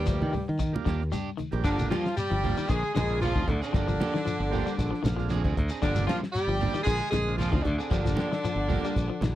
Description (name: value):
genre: afrobeat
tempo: 115 BPM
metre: 4/4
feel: swing 53% on 16ths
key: unclear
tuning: A4 = 440 Hz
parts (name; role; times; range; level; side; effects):
- bright horn section; melody; 0.0-9.4 s; D3 to Ab4; -31 LUFS; right 1 dB; none
- bright trombone; second line; 0.0-9.4 s; D3 to Ab3; -42 LUFS; right 3 dB; none
- raspy baritone saxophone; second line; 0.0-9.4 s; G2 to Ab3; -39 LUFS; left 9 dB; none
- electric guitar at the edge of break-up; arpeggios; 0.0-9.3 s; D3 to G3; -35 LUFS; left 8 dB; none
- electric guitar at the edge of break-up; stabs; 0.0-9.2 s; F3 to Ab4; -36 LUFS; right 6 dB; lush chorus
- modern bright fingered electric bass; bass; 0.0-9.4 s; G1 to Eb3; -29 LUFS; equal; none
- combo organ; accompaniment; 0.1-8.9 s; G3 to Bb5; -37 LUFS; right 10 dB; none
- warm soul drum kit; drums; 0.1-9.4 s; hi-hat, kick drum, snare drum; -30 LUFS; equal; none
- congas; percussion; 0.1-9.4 s; none; -34 LUFS; right 3 dB; none
- shekere; percussion; 0.1-9.4 s; none; -37 LUFS; left 2 dB; none
room: little or no reverb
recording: dry, close 1970s-style studio recording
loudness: -25 LUFS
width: side -13 dB against mid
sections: 0.0-1.6 A section; 1.6-9.4 B section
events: transistor combo organ fill 4.3-5.8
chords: 0.0 Ebmaj7; 1.6 Gm7; 2.7 Bb9; 3.7 Gm7; 4.8 Bb9; 5.8 Gm7; 6.9 Bb9; 7.9 Gm7